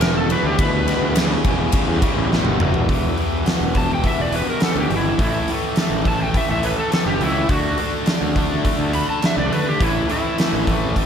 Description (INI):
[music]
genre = blues rock power trio and southern rock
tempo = 104 BPM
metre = 4/4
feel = straight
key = E minor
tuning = A4 = 442 Hz
[part]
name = overdriven slide guitar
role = melody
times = 0.0-10.7 s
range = E4 to B5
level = -24 LUFS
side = equal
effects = slapback echo
[part]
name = overdriven tonewheel organ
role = sustained chords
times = 0.0-11.1 s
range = G3 to A#4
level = -33 LUFS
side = right 3 dB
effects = none
[part]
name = overdriven electric guitar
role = riff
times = 0.0-11.1 s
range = E2 to D4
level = -22 LUFS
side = left 1 dB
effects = slapback echo
[part]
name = fuzz picked electric bass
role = bass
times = 0.0-11.0 s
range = E1 to D3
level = -24 LUFS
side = equal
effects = overdrive
[part]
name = huge arena drum kit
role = drums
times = 0.0-11.1 s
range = hi-hat, kick drum, ride cymbal, snare drum, toms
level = -21 LUFS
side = equal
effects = none
[sound]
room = moderate lush hall reverb, RT60 1.8 s, small room reverb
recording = big arena sound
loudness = -17 LUFS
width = side -8 dB against mid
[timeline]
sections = 0.0-2.9 A section; 2.9-11.1 B section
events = electric slide guitar solo 0.0-2.9; drum fill 2.3-2.9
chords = 0.0 Em; 5.2 A; 7.5 D; 9.8 Am